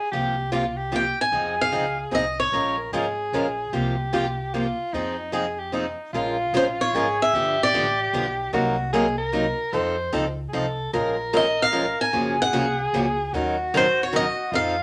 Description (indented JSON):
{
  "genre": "acoustic string swing (jazz manouche)",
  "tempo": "150 BPM",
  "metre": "3/4",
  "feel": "swing 63% on 8ths",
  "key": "F minor, Bb minor from 6.1 s",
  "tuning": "A4 = 439 Hz",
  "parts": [
    { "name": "warm soprano saxophone", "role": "second line", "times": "0.0-14.8 s", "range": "Eb4 to C5", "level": "-29 LUFS", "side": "equal", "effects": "none" },
    { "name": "picked steel-string acoustic guitar", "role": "accompaniment", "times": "0.1-14.7 s", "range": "C3 to Bb4", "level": "-28 LUFS", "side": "equal", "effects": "none" },
    { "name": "upright bass", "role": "bass", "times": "0.1-14.8 s", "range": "Gb1 to F2", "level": "-36 LUFS", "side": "equal", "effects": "none" },
    { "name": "picked swing-style acoustic guitar", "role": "melody", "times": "1.0-2.8, 6.6-8.0, 11.4-14.8 s", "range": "C5 to Ab5", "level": "-24 LUFS", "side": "equal", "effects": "none" }
  ],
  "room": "wet studio ambience, RT60 0.5 s",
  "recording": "none",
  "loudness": "-24 LUFS",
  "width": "mono",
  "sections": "0.0-6.1 A section; 6.1-14.8 B section",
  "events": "none",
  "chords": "0.1 C7sus4; 1.3 Fm7; 2.5 Bbm7; 3.7 C7sus4; 4.9 Fm7; 6.1 Bbm7; 7.3 G7; 8.5 Cm7b5; 9.7 F7; 10.9 Bbm7; 12.1 Gbmaj7; 13.3 Ebm7",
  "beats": "| 0.12 0.52 0.93 | 1.33 1.73 2.13 | 2.53 2.93 3.33 | 3.73 4.13 4.54 | 4.94 5.34 5.74 | 6.14 6.54 6.94 | 7.34 7.74 8.14 | 8.54 8.94 9.34 | 9.73 10.13 10.53 | 10.93 11.33 11.73 | 12.13 12.53 12.93 | 13.33 13.73 14.13 | 14.53"
}